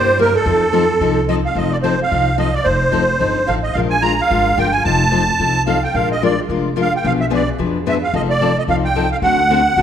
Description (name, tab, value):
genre	acoustic string swing (jazz manouche)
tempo	219 BPM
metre	4/4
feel	swing 57% on 8ths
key	F mixolydian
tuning	A4 = 440 Hz
part	musette accordion	melody	0.0-9.8 s	A4 to Bb5	-16 LUFS	right 3 dB	none
part	picked steel-string acoustic guitar	accompaniment	0.0-9.8 s	B2 to B4	-19 LUFS	left 6 dB	none
part	upright bass	bass	0.0-9.8 s	F1 to G2	-21 LUFS	equal	none
room	moderate scoring stage reverb, RT60 1.8 s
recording	recorded in a church or concert hall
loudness	-14 LUFS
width	side -9 dB against mid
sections	0.0-1.6 A section; 1.6-9.8 A section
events	none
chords	0.5 F7; 3.8 Bb7; 4.8 F7; 5.9 Bb7; 7.0 Bdim7; 8.1 F7; 9.2 D7